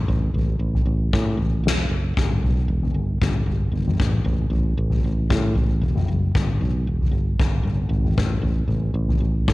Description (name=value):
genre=psychedelic rock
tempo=115 BPM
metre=4/4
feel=straight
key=unclear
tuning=A4 = 441 Hz
part: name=fingered electric bass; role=bass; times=0.0-9.5 s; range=E1 to A2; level=-24 LUFS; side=right 1 dB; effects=none
part: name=soft-mallet drum kit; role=drums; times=0.1-9.5 s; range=kick drum, snare drum, toms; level=-21 LUFS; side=left 1 dB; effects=none
room=little or no reverb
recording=1960s-style stereo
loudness=-19 LUFS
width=side -19 dB against mid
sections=0.0-9.5 A section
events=none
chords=none